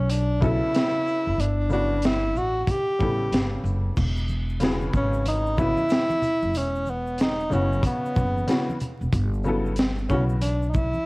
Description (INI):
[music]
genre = hip hop, jazz-hop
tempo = 93 BPM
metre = 4/4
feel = swing 63% on 16ths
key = unclear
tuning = A4 = 439 Hz
[part]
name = breathy tenor saxophone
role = melody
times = 0.0-11.1 s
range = B3 to G4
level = -25 LUFS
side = equal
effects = none
[part]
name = upright bass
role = bass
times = 0.0-10.9 s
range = E1 to B1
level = -26 LUFS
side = equal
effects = tube saturation
[part]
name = crunchy breakbeat drum kit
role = drums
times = 0.1-10.9 s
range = crash cymbal, hi-hat, kick drum, shaker, snare drum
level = -26 LUFS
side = equal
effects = none
[part]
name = clear upright piano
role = accompaniment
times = 0.4-10.4 s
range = C#3 to B4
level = -29 LUFS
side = left 2 dB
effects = none
[part]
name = tube shaker and congas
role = percussion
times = 4.0-11.1 s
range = none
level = -35 LUFS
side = right 1 dB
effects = none
[sound]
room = light reverb, studio reverb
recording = worn, warbling old tape, cassette tape, vinyl crackle, warbly pitch drift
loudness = -21 LUFS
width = side -25 dB against mid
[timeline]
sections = 0.0-4.0 A section; 4.0-11.1 A section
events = none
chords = 0.0 Gmaj9; 4.0 Eadd9; 9.1 Gmaj9